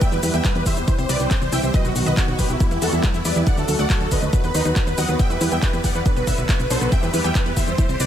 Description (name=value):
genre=uplifting trance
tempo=139 BPM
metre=4/4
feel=straight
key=E minor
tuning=A4 = 440 Hz
part: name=supersaw chords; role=melody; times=0.0-8.1 s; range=D#4 to G5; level=-26 LUFS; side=equal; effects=ensemble chorus, sidechain pumping, ping-pong delay
part: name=wide unison pluck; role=second line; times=0.0-8.1 s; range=E4 to G5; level=-30 LUFS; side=right 1 dB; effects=cassette tape, sidechain pumping, ping-pong delay
part: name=filtered supersaw swell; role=sustained chords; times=0.0-8.1 s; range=D3 to G4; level=-27 LUFS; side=equal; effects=phaser, sidechain pumping
part: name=electronic kick drum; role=drums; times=0.0-7.9 s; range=none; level=-20 LUFS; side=equal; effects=none
part: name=punchy analog drum machine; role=drums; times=0.0-8.1 s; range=handclaps, hi-hat, shaker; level=-28 LUFS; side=left 1 dB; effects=none
part: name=wide unison pluck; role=arpeggios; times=0.1-8.1 s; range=D3 to E4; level=-30 LUFS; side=right 1 dB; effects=sidechain pumping, ping-pong delay
part: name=solid FM bass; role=bass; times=0.1-8.1 s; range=B1 to E2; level=-24 LUFS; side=equal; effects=sidechain pumping
room=light reverb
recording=none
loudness=-17 LUFS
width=side -10 dB against mid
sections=0.0-8.1 A section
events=none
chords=0.0 Em; 0.9 C; 1.7 B; 2.6 Em; 3.5 D; 4.3 B/D#; 5.2 Em; 6.1 Bm; 6.9 Em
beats=| 0.01 0.45 0.88 1.31 | 1.74 2.17 2.60 3.04 | 3.47 3.90 4.33 4.76 | 5.19 5.63 6.06 6.49 | 6.92 7.35 7.78